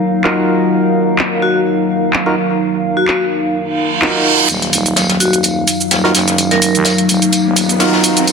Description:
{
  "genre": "bass house",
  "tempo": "127 BPM",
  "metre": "4/4",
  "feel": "swing 55% on 16ths",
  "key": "Eb minor",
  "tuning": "A4 = 440 Hz",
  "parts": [
    { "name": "dark analog pad", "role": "sustained chords", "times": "0.0-8.3 s", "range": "Gb3 to F5", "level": "-18 LUFS", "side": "equal", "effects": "chorus" },
    { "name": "warbly tape-like pad", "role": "texture", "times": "0.0-8.3 s", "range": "Gb3 to F5", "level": "-18 LUFS", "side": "left 2 dB", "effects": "chorus, built-in reverb" },
    { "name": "percussive organ stab", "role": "stabs", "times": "0.2-8.3 s", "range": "Eb4 to Bb4", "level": "-18 LUFS", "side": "right 2 dB", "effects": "chorus, ping-pong delay" },
    { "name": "garage drum kit", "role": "drums", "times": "0.2-8.3 s", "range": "handclaps, hi-hat, shaker", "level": "-16 LUFS", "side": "right 1 dB", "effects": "low-pass filter on snare, low-pass filter on hats, low-pass filter on perc, low-pass filter on room" },
    { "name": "vibraphone with medium hard mallets", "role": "melody", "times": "1.4-7.0 s", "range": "Gb4 to Bb4", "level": "-19 LUFS", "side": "left 1 dB", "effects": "ping-pong delay" },
    { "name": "reverse cymbal and riser", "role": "sound effects", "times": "3.7-8.3 s", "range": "none", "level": "-20 LUFS", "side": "right 4 dB", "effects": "none" },
    { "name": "growling FM bass", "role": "bass", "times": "4.5-8.3 s", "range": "Eb1 to Eb2", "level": "-21 LUFS", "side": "equal", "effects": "tube saturation, high-pass filter" },
    { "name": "jazz brush drum kit", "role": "drums", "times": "4.5-8.3 s", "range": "hi-hat, snare drum, tambourine", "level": "-20 LUFS", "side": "left 2 dB", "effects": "high-pass filter on hats, soft clipping on snare, high-pass filter on snare, high-pass filter on perc, high-pass filter on room" }
  ],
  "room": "moderate lush hall reverb, RT60 1.8 s, small room ambience",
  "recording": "dense, heavily limited modern master, high-pass filter",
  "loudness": "-11 LUFS",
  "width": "side -5 dB against mid",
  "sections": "0.0-4.5 A section; 4.5-8.3 B section",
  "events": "reverse cymbal 3.7-4.5; build-up 4.5-8.3; riser 4.5-8.3",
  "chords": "0.0 Ebmadd9",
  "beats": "0.24 | 0.71 1.19 1.66 2.13 | 2.60 3.08 3.55 4.02 | 4.49 4.97 5.44 5.91 | 6.38 6.86 7.33 7.80 | 8.27"
}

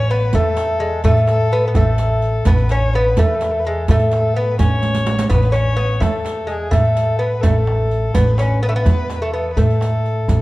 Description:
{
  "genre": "Persian modal ensemble",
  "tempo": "84 BPM (dotted quarters)",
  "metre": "6/8",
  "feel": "straight",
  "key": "A dastgah mahur",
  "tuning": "A4 = 441 Hz",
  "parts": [
    { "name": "lute", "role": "melody", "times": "0.0-10.4 s", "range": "G#3 to C#4", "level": "-20 LUFS", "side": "equal", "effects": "none" },
    { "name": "clear kamancheh", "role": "second line", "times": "0.0-10.4 s", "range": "G#4 to C#5", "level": "-24 LUFS", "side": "left 3 dB", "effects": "none" },
    { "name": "upright bass", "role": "bass", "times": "0.0-10.4 s", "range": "A1 to A2", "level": "-18 LUFS", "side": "equal", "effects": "none" },
    { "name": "riq", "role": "percussion", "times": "0.1-10.4 s", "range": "none", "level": "-27 LUFS", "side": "right 4 dB", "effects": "none" },
    { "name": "tombak", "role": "percussion", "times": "0.1-10.4 s", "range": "none", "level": "-20 LUFS", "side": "right 1 dB", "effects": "none" }
  ],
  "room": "moderate recital hall reverb, RT60 1.6 s",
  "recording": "dark, warm production",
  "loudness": "-14 LUFS",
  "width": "side -19 dB against mid",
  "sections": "0.0-10.4 A section",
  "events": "drum fill 4.8-5.3",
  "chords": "none",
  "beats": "0.34 | 1.04 1.75 | 2.46 3.17 | 3.88 4.59 | 5.30 6.01 | 6.72 7.43 | 8.15 8.86 | 9.57 10.28"
}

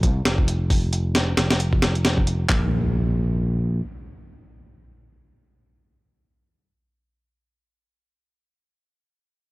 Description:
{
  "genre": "breakbeat, breaks",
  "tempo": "134 BPM",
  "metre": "4/4",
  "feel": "swing 57% on 16ths",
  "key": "unclear",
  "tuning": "A4 = 440 Hz",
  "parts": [
    { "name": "overdriven picked electric bass", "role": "bass", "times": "0.0-3.8 s", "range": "F1 to C2", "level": "-22 LUFS", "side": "equal", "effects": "transformer saturation" },
    { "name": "breakbeat sampler-style drum kit", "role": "drums", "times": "0.0-2.6 s", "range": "handclaps, hi-hat, kick drum, snare drum", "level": "-20 LUFS", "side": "equal", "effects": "none" },
    { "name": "impact", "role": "sound effects", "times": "2.5-7.5 s", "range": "none", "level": "-30 LUFS", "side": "equal", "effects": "none" }
  ],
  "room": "digital ambience",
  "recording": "dry, gritty hardware recording",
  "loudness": "-19 LUFS",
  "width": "side -21 dB against mid",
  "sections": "0.0-2.5 A section; 2.5-6.1 B section",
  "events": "none",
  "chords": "none",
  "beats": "0.26 | 0.70 1.15 1.60 2.05 | 2.50 2.94 3.39 3.84 | 4.29 4.73 5.18 5.63"
}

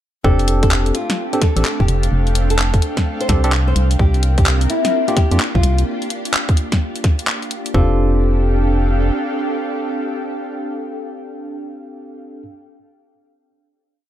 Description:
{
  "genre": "UK garage, two-step garage",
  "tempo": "128 BPM",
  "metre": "4/4",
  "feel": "swing 64% on 16ths",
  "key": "F major",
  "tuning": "A4 = 437 Hz",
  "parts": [
    { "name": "nylon-string guitar", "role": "melody", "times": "0.2-12.4 s", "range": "E4 to C5", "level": "-24 LUFS", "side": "left 2 dB", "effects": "ping-pong delay" },
    { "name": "soft string machine", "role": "sustained chords", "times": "0.2-12.3 s", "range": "A3 to A4", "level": "-28 LUFS", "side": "right 1 dB", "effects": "ensemble chorus, sidechain pumping" },
    { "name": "barky tine electric piano", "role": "stabs", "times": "0.2-12.4 s", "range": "Bb3 to A4", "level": "-24 LUFS", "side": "equal", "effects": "ping-pong delay" },
    { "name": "organ-like FM bass", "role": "bass", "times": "0.2-9.1 s", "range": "D1 to F2", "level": "-16 LUFS", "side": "equal", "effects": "none" },
    { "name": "electronic kick drum", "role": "drums", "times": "0.2-7.9 s", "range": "none", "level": "-16 LUFS", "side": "equal", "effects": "small room ambience" },
    { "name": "airy breathy pad", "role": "texture", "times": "0.2-12.3 s", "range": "C4 to G5", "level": "-27 LUFS", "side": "right 2 dB", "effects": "chorus, sidechain pumping" },
    { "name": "garage drum kit", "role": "drums", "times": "0.4-7.7 s", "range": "handclaps, hi-hat, snare drum", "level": "-21 LUFS", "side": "equal", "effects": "small room ambience" }
  ],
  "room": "little or no reverb",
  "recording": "dark, warm production",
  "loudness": "-15 LUFS",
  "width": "side -12 dB against mid",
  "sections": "0.2-7.7 drop; 7.7-11.5 final chord",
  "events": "drop 0.2-7.7",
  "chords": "0.2 F69; 3.8 C7sus4; 7.7 F69",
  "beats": "| 0.24 0.71 1.18 1.65 | 2.12 2.59 3.06 3.53 | 4.00 4.46 4.93 5.40 | 5.87 6.34 6.81 7.28 | 7.75 8.21 8.68 9.15 | 9.62 10.09 10.56 11.03"
}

